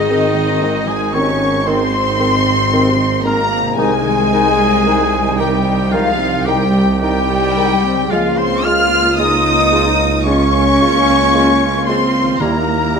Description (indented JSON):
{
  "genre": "classical",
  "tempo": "56 BPM",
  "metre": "4/4",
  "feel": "rubato",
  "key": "Ab major",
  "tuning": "A4 = 440 Hz",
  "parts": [
    { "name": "muted symphonic violin section", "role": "melody", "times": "0.0-13.0 s", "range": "Eb5 to F6", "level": "-19 LUFS", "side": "left 3 dB", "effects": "none" },
    { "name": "hollow concert flute", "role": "second line", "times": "0.0-13.0 s", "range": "Eb5 to F6", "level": "-23 LUFS", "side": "left 2 dB", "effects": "none" },
    { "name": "muted symphonic violin section", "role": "second line", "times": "0.0-13.0 s", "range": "Eb5 to F6", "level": "-24 LUFS", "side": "left 2 dB", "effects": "none" },
    { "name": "warm oboe", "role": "second line", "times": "0.0-13.0 s", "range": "Eb4 to F5", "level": "-24 LUFS", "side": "right 2 dB", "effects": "none" },
    { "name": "muted symphonic viola section", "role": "accompaniment", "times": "0.0-13.0 s", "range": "C3 to F4", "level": "-23 LUFS", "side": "right 1 dB", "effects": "none" },
    { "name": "warm French horn section", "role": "sustained chords", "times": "0.0-13.0 s", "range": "Eb3 to F4", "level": "-20 LUFS", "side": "left 4 dB", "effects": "none" },
    { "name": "concert harp", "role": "arpeggios", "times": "0.0-13.0 s", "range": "Ab2 to F4", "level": "-25 LUFS", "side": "left 8 dB", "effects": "none" },
    { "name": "muted symphonic cello section", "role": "bass", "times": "0.0-13.0 s", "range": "Eb3 to F4", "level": "-21 LUFS", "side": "right 3 dB", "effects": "none" },
    { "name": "muted symphonic double bass section", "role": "bass", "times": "0.0-13.0 s", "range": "Ab1 to Eb2", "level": "-23 LUFS", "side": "right 3 dB", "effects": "none" },
    { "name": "warm tuba", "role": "bass", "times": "0.0-13.0 s", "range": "Ab1 to Eb2", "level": "-22 LUFS", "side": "right 6 dB", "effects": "none" },
    { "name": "clear clarinet", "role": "second line", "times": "0.1-13.0 s", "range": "C4 to F4", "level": "-27 LUFS", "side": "left 4 dB", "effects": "none" },
    { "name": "dark bassoon", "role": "accompaniment", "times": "0.1-13.0 s", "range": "Eb3 to Ab3", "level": "-24 LUFS", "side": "right 3 dB", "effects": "none" },
    { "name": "timpani", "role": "percussion", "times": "12.4-13.0 s", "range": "Eb3", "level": "-23 LUFS", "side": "right 2 dB", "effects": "none" }
  ],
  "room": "moderate scoring stage reverb, RT60 1.5 s",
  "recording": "close, detailed microphones",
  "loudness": "-12 LUFS",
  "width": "side -6 dB against mid",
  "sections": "0.0-13.0 A section",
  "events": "none",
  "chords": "0.0 Ab; 3.8 Ab/C; 8.1 Bbm7/Db; 12.4 Eb7b9"
}